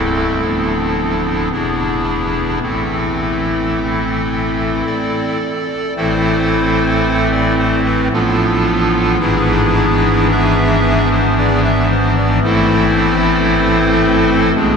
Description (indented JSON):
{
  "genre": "classical, chorale-style piece for pipe organ",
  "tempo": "56 BPM",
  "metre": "3/4",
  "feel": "straight",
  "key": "A minor",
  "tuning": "A4 = 439 Hz",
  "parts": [
    { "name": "pipe organ, clarinet reed", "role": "solo", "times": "0.0-14.8 s", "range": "C1 to E5", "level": "-13 LUFS", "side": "equal", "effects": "none" }
  ],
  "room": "wet cathedral reverb, RT60 6.5 s",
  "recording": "heard from further back in the room, nothing above 10.4 kHz",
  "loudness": "-13 LUFS",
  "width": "side -6 dB against mid",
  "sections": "0.0-6.0 A section; 6.0-14.8 B section",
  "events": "none",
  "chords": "0.4 Bm7b5/D; 1.5 E7; 2.6 Am; 8.1 Bm7b5/A; 9.2 E7/G#; 12.4 Am",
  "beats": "0.45 1.52 | 2.63 3.73 4.86 | 5.97 7.05 8.12 | 9.20 10.31 11.38 | 12.44 13.49 14.56"
}